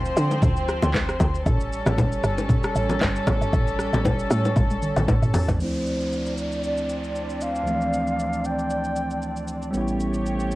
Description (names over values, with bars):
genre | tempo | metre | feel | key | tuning
amapiano | 116 BPM | 4/4 | swing 55% on 16ths | unclear | A4 = 439 Hz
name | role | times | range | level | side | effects
warm studio string section | sustained chords | 0.0-10.6 s | F3 to D5 | -28 LUFS | equal | sidechain pumping, low-pass filter, cassette tape
woody log drum bass | bass | 0.0-5.6 s | G1 to D3 | -24 LUFS | equal | none
afro-pop drum kit | drums | 0.1-10.6 s | handclaps, hi-hat, kick drum, rim click, shaker, toms | -26 LUFS | equal | cassette tape
bongos and congas | percussion | 0.3-5.6 s | none | -25 LUFS | left 1 dB | none
bright reedy silver concert flute | melody | 5.6-9.5 s | C5 to G5 | -29 LUFS | equal | low-pass filter, cassette tape, tape echo
bell-like tine electric piano | accompaniment | 5.6-10.6 s | D2 to E4 | -27 LUFS | right 1 dB | low-pass filter, cassette tape
downlifter and swell | sound effects | 5.6-10.6 s | none | -40 LUFS | equal | none
saturated sub bass | bass | 9.7-10.6 s | A1 | -28 LUFS | equal | none
room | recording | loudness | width
digital ambience | home recording on cassette | -21 LUFS | side -18 dB against mid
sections
0.0-5.6 A section; 5.6-10.6 B section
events
drop 0.0-5.6; drum fill 4.6-5.6; filter sweep 5.6-10.6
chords
0.0 Dm7; 1.5 A7; 5.6 Dm7; 9.7 A7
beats
0.43 0.94 | 1.46 1.98 2.50 3.01 | 3.53 4.05 4.57 5.08 | 5.60 6.12 6.63 7.15 | 7.67 8.19 8.70 9.22 | 9.74 10.26